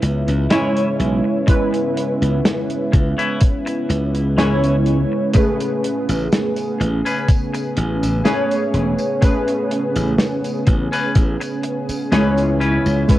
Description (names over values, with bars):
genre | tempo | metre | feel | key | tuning
vaporwave | 62 BPM | 4/4 | straight | A major | A4 = 441 Hz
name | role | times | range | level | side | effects
warbly lo-fi synth keys | accompaniment | 0.0-13.2 s | G#3 to C#5 | -20 LUFS | equal | analog chorus, tape echo
lush unison pad | sustained chords | 0.0-13.2 s | C#3 to G#4 | -24 LUFS | equal | chorus
semi-hollow electric guitar | riff | 0.0-13.2 s | C#4 to B4 | -26 LUFS | left 2 dB | wide subtle chorus, tape echo
glassy slap bass | bass | 0.0-13.0 s | E1 to C#2 | -19 LUFS | equal | tube saturation
warm soul drum kit | drums | 0.0-13.2 s | hi-hat, snare drum, tambourine | -23 LUFS | equal | none
electronic kick drum | drums | 1.5-13.2 s | none | -14 LUFS | equal | none
room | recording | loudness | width
light reverb, studio reverb | worn, warbling old tape, cassette tape, warbly pitch drift | -16 LUFS | side -14 dB against mid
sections
0.0-13.2 A section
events
none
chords
0.0 C#m7; 5.4 Amaj9; 12.6 C#m7